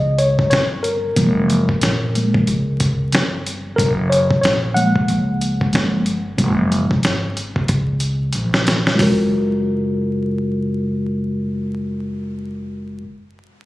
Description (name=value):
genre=hip hop, jazz-hop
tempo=92 BPM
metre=4/4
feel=swing 58% on 16ths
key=F# major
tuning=A4 = 435 Hz
part: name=mellow tine electric piano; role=accompaniment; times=0.0-13.0 s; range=E#3 to F#5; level=-19 LUFS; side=equal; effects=medium stereo tremolo, low-pass filter
part: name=upright bass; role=bass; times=0.0-13.0 s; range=F#1 to C#2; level=-22 LUFS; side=equal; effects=none
part: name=dusty soul sampler-style drum kit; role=drums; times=0.2-9.2 s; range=hi-hat, kick drum, snare drum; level=-19 LUFS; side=equal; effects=none
room=light reverb, digital ambience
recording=recorded on a phone in the room, club reverb, vinyl crackle, compression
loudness=-16 LUFS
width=side -17 dB against mid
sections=0.0-9.0 A section; 9.0-11.6 B section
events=tine electric piano solo 0.0-9.0; filter sweep on tine electric piano 0.0-9.0; drum fill 7.7-9.0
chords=0.0 F#maj9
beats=0.52 | 1.17 1.82 2.47 3.12 | 3.78 4.43 5.08 5.73 | 6.38 7.04 7.69 8.34 | 8.99 9.65 10.30 10.95